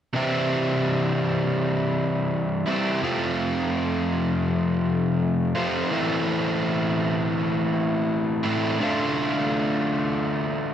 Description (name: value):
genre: rock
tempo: 83 BPM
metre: 4/4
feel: straight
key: C major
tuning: A4 = 438 Hz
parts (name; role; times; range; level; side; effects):
- crunchy overdriven guitar; riff; 0.1-10.7 s; F2 to F4; -22 LUFS; equal; none
room: wet lush hall reverb, RT60 1.9 s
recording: big arena sound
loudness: -22 LUFS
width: side -9 dB against mid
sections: 0.2-10.7 A section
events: none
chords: 0.2 C; 3.0 F; 5.9 Am; 8.8 Dm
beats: | 0.16 0.88 1.60 2.32 | 3.04 3.77 4.49 5.21 | 5.93 6.65 7.37 8.09 | 8.81 9.53 10.24